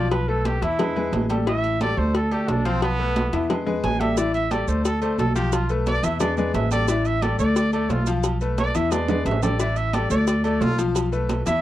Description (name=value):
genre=latin, salsa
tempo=177 BPM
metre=4/4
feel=straight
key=unclear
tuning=A4 = 440 Hz
part: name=warm trumpet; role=melody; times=0.0-11.6 s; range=B3 to G#5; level=-26 LUFS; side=right 2 dB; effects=none
part: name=bright concert grand piano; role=accompaniment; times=0.0-11.6 s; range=E3 to F5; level=-26 LUFS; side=left 4 dB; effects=none
part: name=upright bass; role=bass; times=0.0-11.6 s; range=A1 to E2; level=-24 LUFS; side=equal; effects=none
part: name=agogo bells and timbales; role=percussion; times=0.1-11.6 s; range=none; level=-33 LUFS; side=right 9 dB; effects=none
part: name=congas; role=percussion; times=0.1-11.6 s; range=none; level=-28 LUFS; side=right 2 dB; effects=none
part: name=cowbell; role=percussion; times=0.1-11.6 s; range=none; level=-30 LUFS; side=left 5 dB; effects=none
part: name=maracas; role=percussion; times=4.2-11.6 s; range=none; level=-37 LUFS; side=right 19 dB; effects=none
room=light reverb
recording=dry, close 1970s-style studio recording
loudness=-20 LUFS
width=side -13 dB against mid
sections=0.0-11.6 A section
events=trumpet solo 0.0-11.6; drum fill 8.9-9.6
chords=0.1 G13/B; 0.8 E; 1.5 A5; 2.1 Dm; 2.8 Fmaj7#11/B; 3.5 E; 4.2 A5; 4.9 Dm; 5.5 Dm69/B; 6.2 E; 6.9 A5; 7.6 Dm; 8.2 Dm69/B; 8.9 E; 9.6 A5; 10.3 Dm; 11.0 Fmaj7#11/B